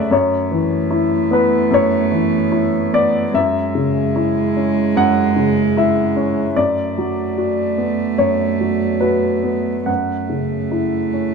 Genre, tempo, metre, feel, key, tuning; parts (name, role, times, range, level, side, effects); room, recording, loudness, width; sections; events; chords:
neoclassical piano and strings; 74 BPM; 4/4; rubato; A4 = 440 Hz
warm cello; second line; 0.0-11.3 s; G#3 to A3; -20 LUFS; right 9 dB
warm upright piano; accompaniment; 0.0-11.3 s; F#2 to F#5; -16 LUFS; left 3 dB
light reverb; close, detailed microphones; -15 LUFS; side -5 dB against mid
0.0-11.3 A section
0.1 Asus2/F#; 3.3 E6/F#; 6.6 Bm7/F#; 9.9 F#m7